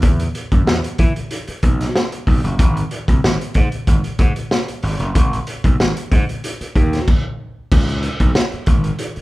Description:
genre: funk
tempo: 94 BPM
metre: 4/4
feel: straight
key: C# minor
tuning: A4 = 440 Hz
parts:
  - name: gritty slap bass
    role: bass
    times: 0.0-9.2 s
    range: F#1 to E3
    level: -21 LUFS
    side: equal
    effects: overdrive
  - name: raw garage drum kit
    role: drums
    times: 0.0-9.2 s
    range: crash cymbal, hi-hat, kick drum, snare drum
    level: -16 LUFS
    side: equal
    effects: none
room: light reverb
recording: band playing live in one room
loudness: -15 LUFS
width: side -18 dB against mid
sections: 0.0-7.7 A section; 7.7-9.2 B section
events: none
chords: none

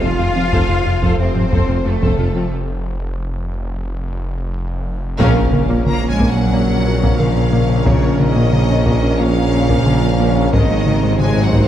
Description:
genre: cinematic, hybrid orchestral and electronic film score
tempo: 90 BPM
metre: 4/4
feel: straight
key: Bb minor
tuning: A4 = 444 Hz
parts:
  - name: warm symphonic violin section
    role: melody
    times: 0.0-11.7 s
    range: A4 to Bb5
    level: -27 LUFS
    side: left 2 dB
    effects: none
  - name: warm symphonic violin section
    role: second line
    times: 0.0-11.7 s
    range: Db4 to F5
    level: -26 LUFS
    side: left 2 dB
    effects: none
  - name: clear symphonic viola section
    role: accompaniment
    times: 0.0-11.7 s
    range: Db3 to C5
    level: -28 LUFS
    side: equal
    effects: none
  - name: dark French horn section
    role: sustained chords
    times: 0.0-11.7 s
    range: Ab3 to F4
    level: -26 LUFS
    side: left 2 dB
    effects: none
  - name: metallic inharmonic drone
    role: sustained chords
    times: 0.0-11.7 s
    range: C3 to Eb5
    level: -25 LUFS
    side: left 2 dB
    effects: chorus, built-in reverb
  - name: warm trombone section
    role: sustained chords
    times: 0.0-11.7 s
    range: Bb2 to Bb3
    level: -27 LUFS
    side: right 4 dB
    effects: none
  - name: analog pluck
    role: arpeggios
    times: 0.0-11.6 s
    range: F3 to Bb4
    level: -26 LUFS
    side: right 3 dB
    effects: none
  - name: smooth synth bass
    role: riff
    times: 0.0-11.6 s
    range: F2 to Bb3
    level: -20 LUFS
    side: left 2 dB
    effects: none
  - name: clear symphonic cello section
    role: bass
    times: 0.0-11.7 s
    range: Db3 to F4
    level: -23 LUFS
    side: equal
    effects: none
  - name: rich symphonic double bass section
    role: bass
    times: 0.0-11.7 s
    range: F1 to Bb1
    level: -23 LUFS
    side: right 3 dB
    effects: none
  - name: snarling distorted saw bass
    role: bass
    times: 0.0-11.7 s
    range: F1 to Bb1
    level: -22 LUFS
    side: equal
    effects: distortion
  - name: clear tuba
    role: bass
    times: 0.2-11.7 s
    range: F1 to Bb1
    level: -23 LUFS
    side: right 3 dB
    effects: none
  - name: solo taiko drums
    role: drums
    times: 0.5-11.7 s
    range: none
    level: -20 LUFS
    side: equal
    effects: none
  - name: impact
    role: sound effects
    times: 5.2-7.9 s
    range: none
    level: -24 LUFS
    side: equal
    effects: none
room: moderate scoring stage reverb, RT60 2.0 s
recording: dark, warm production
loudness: -14 LUFS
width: side -11 dB against mid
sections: 0.0-5.2 A section; 5.2-11.7 B section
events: break 2.5-5.2; drum fill 4.5-5.2; band accent 5.2-5.9; impact 5.2-7.9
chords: 0.0 F; 5.2 Bbm; 10.5 Ab

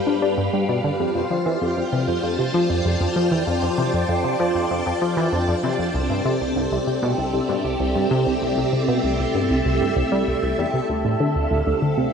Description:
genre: ambient, sequencer-driven space music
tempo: 97 BPM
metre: 4/4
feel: straight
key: unclear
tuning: A4 = 440 Hz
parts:
  - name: string machine, full ensemble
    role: sustained chords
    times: 0.0-12.1 s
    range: G3 to A5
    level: -22 LUFS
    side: equal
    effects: phaser, ensemble chorus
  - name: tight sequenced synth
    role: riff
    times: 0.1-12.1 s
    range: C2 to D4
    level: -22 LUFS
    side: equal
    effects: chorus, ping-pong delay
room: moderate plate reverb, RT60 2.4 s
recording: none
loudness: -19 LUFS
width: side -6 dB against mid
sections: 0.0-12.1 A section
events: none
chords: 0.0 G7; 1.0 F69; 5.9 C6; 10.9 Dm7

